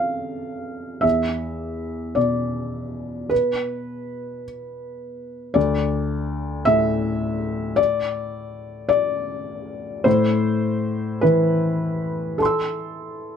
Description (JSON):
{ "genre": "neoclassical minimalist piano", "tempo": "53 BPM (dotted quarters)", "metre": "6/8", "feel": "rubato", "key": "A minor", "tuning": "A4 = 437 Hz", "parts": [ { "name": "felt-muted upright piano", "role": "solo", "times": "0.0-13.4 s", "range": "D2 to E6", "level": "-21 LUFS", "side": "left 1 dB", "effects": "none" } ], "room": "light reverb", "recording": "none", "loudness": "-20 LUFS", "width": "side -7 dB against mid", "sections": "0.0-13.4 A section", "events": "none", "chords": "0.0 F; 1.0 E5; 5.6 Dsus2; 10.1 Am" }